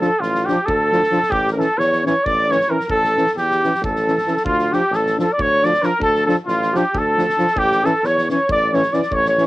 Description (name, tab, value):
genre	balkan folk, Balkan brass band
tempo	270 BPM (eighths)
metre	7/8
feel	straight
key	unclear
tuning	A4 = 440 Hz
part	clear flugelhorn	melody	0.0-9.4 s	F4 to D5	-18 LUFS	right 1 dB	cassette tape
part	warm trumpet	second line	0.0-9.4 s	F4 to D5	-22 LUFS	left 2 dB	cassette tape
part	mellow euphonium	accompaniment	0.0-9.5 s	C#4 to D4	-24 LUFS	left 4 dB	cassette tape
part	warm euphonium	accompaniment	0.0-9.5 s	E3 to F3	-22 LUFS	right 2 dB	cassette tape
part	loose indie drum kit	percussion	0.0-9.4 s	kick drum, snare drum	-32 LUFS	equal	none
part	clear tuba	bass	0.2-9.4 s	A1 to E2	-24 LUFS	equal	transformer saturation
room	little or no reverb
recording	home recording on cassette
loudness	-15 LUFS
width	side -18 dB against mid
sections	0.0-4.4 A section; 4.4-9.5 A section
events	none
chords	0.0 Dm; 1.3 A; 4.4 Dm; 7.6 A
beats	0.19 0.41 0.64 0.86 1.09 | 1.31 1.54 1.76 1.99 2.21 2.44 2.66 | 2.89 3.11 3.33 3.56 3.78 4.00 4.23 | 4.45 4.67 4.89 5.12 5.34 5.56 5.78 | 6.00 6.23 6.45 6.67 6.89 7.12 7.34 | 7.56 7.78 8.00 8.22 8.45 8.67 8.89 | 9.11 9.34